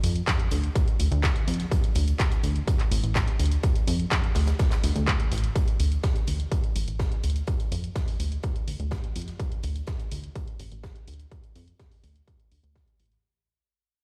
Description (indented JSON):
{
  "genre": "melodic techno",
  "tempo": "125 BPM",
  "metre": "4/4",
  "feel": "straight",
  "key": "D minor",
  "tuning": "A4 = 441 Hz",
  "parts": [
    { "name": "plucky analog bass", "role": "bass", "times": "0.0-13.2 s", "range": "A1 to F2", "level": "-28 LUFS", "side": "equal", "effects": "sidechain pumping" },
    { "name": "big rock drum kit", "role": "drums", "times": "0.0-13.2 s", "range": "hi-hat, snare drum", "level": "-46 LUFS", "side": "equal", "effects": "high-pass filter on hats, high-pass filter on snare, high-pass filter on room" },
    { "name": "punchy analog drum machine", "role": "drums", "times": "0.0-13.2 s", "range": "handclaps, hi-hat", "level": "-36 LUFS", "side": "equal", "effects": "none" },
    { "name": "electronic kick drum", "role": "drums", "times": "0.3-12.9 s", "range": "none", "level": "-28 LUFS", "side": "equal", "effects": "distortion, overdrive" }
  ],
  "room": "studio reverb",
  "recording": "played on a big sound system in a bare room, large studio reverb",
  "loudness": "-26 LUFS",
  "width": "mono",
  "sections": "0.0-5.6 A section; 5.6-13.2 B section",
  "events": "drop 0.0-5.6; fade-out 5.6-13.2",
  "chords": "none"
}